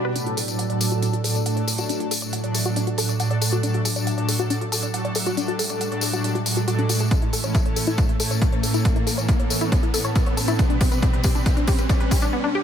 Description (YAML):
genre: uplifting trance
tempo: 138 BPM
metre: 4/4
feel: straight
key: D major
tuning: A4 = 442 Hz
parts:
  - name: analog string pad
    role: sustained chords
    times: 0.0-12.3 s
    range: A2 to B4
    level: -24 LUFS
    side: right 1 dB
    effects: ensemble chorus, sidechain pumping
  - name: wide unison pluck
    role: arpeggios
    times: 0.0-12.6 s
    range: B3 to F#5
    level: -28 LUFS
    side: left 3 dB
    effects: sidechain pumping, dub echo
  - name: swell and riser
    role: sound effects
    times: 0.0-12.6 s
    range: none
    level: -31 LUFS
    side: equal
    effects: none
  - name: electronic hi-hat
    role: drums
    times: 0.2-12.3 s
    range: none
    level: -31 LUFS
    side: right 5 dB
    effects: high-pass filter on hats, high-pass filter on room
  - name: tambourine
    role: percussion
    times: 0.2-12.3 s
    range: none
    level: -30 LUFS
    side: left 6 dB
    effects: none
  - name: electronic kick drum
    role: drums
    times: 7.1-12.2 s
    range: none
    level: -20 LUFS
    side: equal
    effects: none
room: little or no reverb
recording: none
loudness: -19 LUFS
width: side -8 dB against mid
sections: 0.2-12.6 A section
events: swell 0.0; build-up 0.2-12.6; riser 0.2-12.6; filter sweep on synth arpeggio sound 0.2-12.6; drum fill 7.1-12.3; break 12.3-12.6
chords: 0.2 D; 7.1 A; 10.6 G